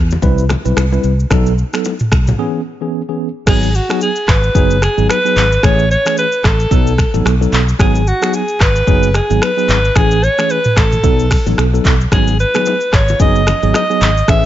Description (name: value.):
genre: afrobeats.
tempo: 111 BPM.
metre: 4/4.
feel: swing 58% on 16ths.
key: unclear.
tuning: A4 = 442 Hz.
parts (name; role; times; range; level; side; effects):
fingered electric bass; bass; 0.0-14.5 s; F#1 to E2; -14 LUFS; equal; none.
afro-pop drum kit; drums; 0.1-14.4 s; crash cymbal, finger snaps, handclaps, hi-hat, kick drum, rim click, shaker, toms; -16 LUFS; equal; none.
bongos and congas; percussion; 0.1-2.4, 12.1-14.4 s; none; -25 LUFS; left 6 dB; none.
tine electric piano; accompaniment; 0.2-14.5 s; E3 to B4; -18 LUFS; equal; medium stereo tremolo.
breathy alto saxophone; melody; 3.5-14.5 s; F#4 to E5; -16 LUFS; equal; none.
room: little or no reverb.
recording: nothing above 7.7 kHz.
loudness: -11 LUFS.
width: side -12 dB against mid.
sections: 0.0-3.5 A section; 3.5-14.5 B section.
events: break 2.4-3.5.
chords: 0.2 Cmaj7; 1.3 B7; 2.4 C#m7; 3.5 G#m7; 5.6 Amaj7; 6.7 B7; 7.8 G#m7; 10.0 Amaj7; 11.0 B7; 12.1 G#m7.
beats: 0.23 0.77 | 1.31 1.85 2.39 2.93 | 3.47 4.01 4.55 5.09 | 5.63 6.17 6.71 7.25 | 7.79 8.33 8.87 9.41 | 9.96 10.50 11.04 11.58 | 12.12 12.66 13.20 13.74 | 14.28.